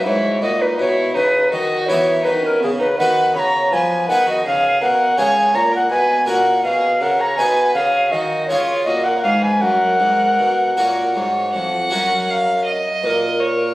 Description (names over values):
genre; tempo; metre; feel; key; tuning
classical, baroque-style sonata movement with continuo; 54 BPM (dotted quarters); 6/8; straight; F# major; A4 = 440 Hz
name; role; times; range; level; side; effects
tenor recorder; melody; 0.0-13.7 s; G#4 to B5; -16 LUFS; equal; none
rich violin; second line; 0.0-13.7 s; B3 to F#5; -22 LUFS; right 2 dB; none
harpsichord; accompaniment; 0.0-13.7 s; E#2 to A#4; -24 LUFS; equal; none
mellow bassoon; bass; 0.0-13.7 s; E#2 to E#3; -23 LUFS; equal; none
room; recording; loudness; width
moderate recital hall reverb, RT60 1.6 s; recorded on a phone in the room, club reverb, compression; -15 LUFS; side -18 dB against mid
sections
0.0-11.9 A section; 11.9-13.7 B section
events
none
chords
0.0 F#7; 0.8 B; 4.1 G#m; 5.2 C#; 6.3 F#/A#; 7.4 G#m7/B; 8.5 C#; 9.6 F#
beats
| 0.79 1.88 | 2.98 4.08 | 5.17 6.28 | 7.38 8.50 | 9.63 10.78 | 11.93 13.04